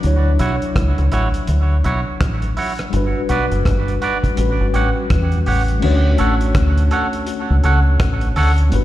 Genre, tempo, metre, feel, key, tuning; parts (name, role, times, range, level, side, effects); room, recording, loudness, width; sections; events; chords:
lovers rock reggae; 83 BPM; 4/4; swing 61% on 16ths; D major; A4 = 440 Hz
mellow tine electric piano; accompaniment; 0.0-8.8 s; F#3 to C#5; -23 LUFS; left 2 dB; medium stereo tremolo, tape echo, slapback echo
deep dub fingered electric bass; bass; 0.0-8.8 s; F#1 to E2; -16 LUFS; equal
cloth-damped thuddy drum kit; drums; 0.0-8.8 s; crash cymbal, hi-hat, kick drum, rim click; -22 LUFS; equal
twangy electric guitar; stabs; 0.4-8.5 s; E4 to F#5; -23 LUFS; right 3 dB; tape echo, slapback echo
studio reverb; live gig heard through the venue's PA, recital hall reverb; -14 LUFS; side -14 dB against mid
0.0-5.8 A section; 5.8-8.8 B section
0.0 Dmaj9; 2.9 Gmaj7; 4.4 A13; 5.8 Dmaj7